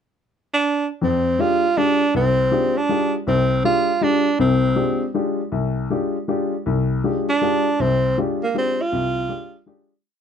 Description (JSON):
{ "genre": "jazz", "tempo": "160 BPM", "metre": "3/4", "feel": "swing 63% on 8ths", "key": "F dorian", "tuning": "A4 = 436 Hz", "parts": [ { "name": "breathy tenor saxophone", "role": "melody", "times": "0.5-5.1, 7.3-9.7 s", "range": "Bb3 to F4", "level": "-19 LUFS", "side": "right 2 dB", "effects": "none" }, { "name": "warm baby grand piano", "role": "accompaniment", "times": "1.0-9.9 s", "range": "C2 to G4", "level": "-21 LUFS", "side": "left 3 dB", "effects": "none" } ], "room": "moderate studio ambience, RT60 0.5 s", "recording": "dark, warm production", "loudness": "-18 LUFS", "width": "side -8 dB against mid", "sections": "0.0-1.0 pickup bar; 1.0-10.0 A section", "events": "fade-out 8.2-10.0", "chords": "0.0 N.C.; 1.0 Fm69" }